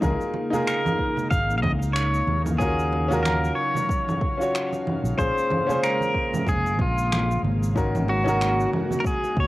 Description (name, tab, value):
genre	sunset chillout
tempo	93 BPM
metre	4/4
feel	swing 57% on 16ths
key	Bb minor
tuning	A4 = 443 Hz
part	clear grand piano	accompaniment	0.0-9.5 s	Db4 to Db5	-27 LUFS	equal	auto-pan, cassette tape, plate reverb
part	airy breathy pad	sustained chords	0.0-9.5 s	Db3 to F5	-31 LUFS	left 1 dB	chorus, cassette tape, plate reverb
part	fretless electric bass	bass	0.0-9.5 s	F1 to Eb2	-25 LUFS	equal	none
part	electronic congas, shaker and finger snaps	drums	0.0-9.4 s	none	-30 LUFS	equal	overdrive, cassette tape
part	electronic kick drum	drums	0.0-9.5 s	none	-27 LUFS	equal	overdrive, cassette tape
part	congas	percussion	0.3-9.3 s	none	-35 LUFS	right 6 dB	none
part	pedal steel guitar	melody	0.7-9.5 s	F4 to F5	-26 LUFS	equal	cassette tape, tape echo, plate reverb
room	moderate booth ambience, RT60 0.2 s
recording	home recording on cassette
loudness	-21 LUFS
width	side -17 dB against mid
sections	0.0-9.5 A section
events	none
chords	0.0 Db69; 2.6 Ebm9; 5.2 Bbm7; 7.8 Ab9sus4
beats	| 0.02 0.67 1.31 1.96 | 2.60 3.25 3.89 4.54 | 5.18 5.83 6.47 7.12 | 7.76 8.41 9.05